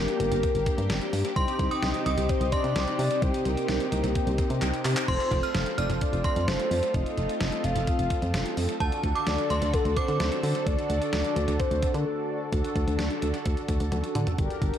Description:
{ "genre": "synth-pop", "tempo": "129 BPM", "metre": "4/4", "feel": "straight", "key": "unclear", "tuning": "A4 = 439 Hz", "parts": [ { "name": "soft octave-layered synth lead", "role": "melody", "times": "0.0-12.4 s", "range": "A4 to F5", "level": "-31 LUFS", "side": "left 1 dB", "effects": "chorus, phaser, analog delay, shimmer reverb" }, { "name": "mellow synth brass", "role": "accompaniment", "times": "0.0-14.8 s", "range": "Bb3 to Bb4", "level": "-32 LUFS", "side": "left 1 dB", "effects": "chorus, analog delay, shimmer reverb" }, { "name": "string machine, violins", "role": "sustained chords", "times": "0.0-14.4 s", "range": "C3 to A4", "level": "-36 LUFS", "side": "equal", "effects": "ensemble chorus, shimmer reverb" }, { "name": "solid FM bass", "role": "bass", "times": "0.0-14.7 s", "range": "F1 to D3", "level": "-28 LUFS", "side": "equal", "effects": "none" }, { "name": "clean 12-bit digital drum machine", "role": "drums", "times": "0.1-14.8 s", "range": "crash cymbal, handclaps, hi-hat, kick drum, snare drum, toms", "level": "-30 LUFS", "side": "equal", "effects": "analog delay" }, { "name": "synth chime", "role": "second line", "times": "1.4-10.2 s", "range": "A5 to F6", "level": "-35 LUFS", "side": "right 2 dB", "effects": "ensemble chorus, analog delay, shimmer reverb" } ], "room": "moderate spring reverb, RT60 1.8 s", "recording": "echo-heavy mix", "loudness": "-24 LUFS", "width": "side -10 dB against mid", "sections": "0.0-12.5 A section; 12.5-14.4 B section", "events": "drum fill 4.6-5.1, 13.9-14.4; break 12.1-12.5", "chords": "0.0 Gm; 1.4 Cm; 5.1 F; 8.8 D", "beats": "0.43 0.90 | 1.36 1.83 2.29 2.76 | 3.22 3.69 4.15 4.62 | 5.08 5.55 6.01 6.48 | 6.94 7.41 7.87 8.34 | 8.80 9.27 9.73 10.20 | 10.66 11.13 11.60 12.06 | 12.53 12.99 13.46 13.92 | 14.39" }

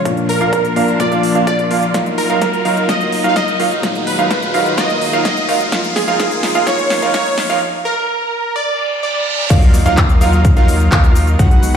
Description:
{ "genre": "EDM, festival progressive house", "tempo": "127 BPM", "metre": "4/4", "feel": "straight", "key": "Eb minor", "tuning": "A4 = 440 Hz", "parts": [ { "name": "plucky unison lead", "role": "melody", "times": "0.0-9.5 s", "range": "Ab4 to F5", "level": "-18 LUFS", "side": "right 2 dB", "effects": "lush chorus, ping-pong delay" }, { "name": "felt-muted upright piano", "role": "accompaniment", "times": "0.0-7.6 s", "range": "Bb2 to F4", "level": "-22 LUFS", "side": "left 5 dB", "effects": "vintage 12-bit sampler grit, sidechain pumping" }, { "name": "dark studio string section", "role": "sustained chords", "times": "0.0-11.8 s", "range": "Bb2 to F4", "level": "-26 LUFS", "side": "left 1 dB", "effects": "sidechain pumping" }, { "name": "dark concert grand piano", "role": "arpeggios", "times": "0.0-11.7 s", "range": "F5 to F#5", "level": "-21 LUFS", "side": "right 6 dB", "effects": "sidechain pumping, low-pass filter, ping-pong delay" }, { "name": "supersaw stab", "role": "riff", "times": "0.0-11.8 s", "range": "F3 to F#5", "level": "-20 LUFS", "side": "right 1 dB", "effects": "cassette tape, sidechain pumping, low-pass filter, ping-pong delay" }, { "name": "riser, reverse cymbal and impact", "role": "sound effects", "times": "0.0-11.4 s", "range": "none", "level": "-25 LUFS", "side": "equal", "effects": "none" }, { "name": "big-room dance drum kit", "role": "drums", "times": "0.1-11.7 s", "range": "crash cymbal, handclaps, hi-hat, shaker, snare drum", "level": "-22 LUFS", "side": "left 1 dB", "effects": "overdrive" }, { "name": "electronic kick drum", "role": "drums", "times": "0.1-11.5 s", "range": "none", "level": "-13 LUFS", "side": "equal", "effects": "overdrive, high-pass filter on kick" }, { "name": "saturated sub bass", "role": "bass", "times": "9.5-11.7 s", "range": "B1 to Eb2", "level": "-15 LUFS", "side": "equal", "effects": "sidechain pumping" } ], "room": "moderate recital hall reverb, RT60 1.4 s", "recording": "played on a big sound system in a bare room, large studio reverb, high-pass filter", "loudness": "-12 LUFS", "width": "side -8 dB against mid", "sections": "0.0-9.5 A section; 9.5-11.8 B section", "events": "build-up 0.0-9.5; riser 0.0-7.6; filter sweep on supersaw synth 0.0-9.5; filter sweep 0.0-9.5; drum fill 1.9-7.6; break 7.6-9.5; reverse cymbal 8.8-9.5; drop 9.5-11.8; impact 9.5-11.4", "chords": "0.1 Bb; 1.9 Ebmadd9; 3.8 B6; 5.7 Db; 7.6 N.C.; 9.5 Ebmadd9", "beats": "| 0.05 0.53 1.00 1.47 | 1.94 2.42 2.89 3.36 | 3.83 4.31 4.78 5.25 | 5.72 6.20 6.67 7.14 | 7.61 8.09 8.56 9.03 | 9.50 9.97 10.45 10.92 | 11.39" }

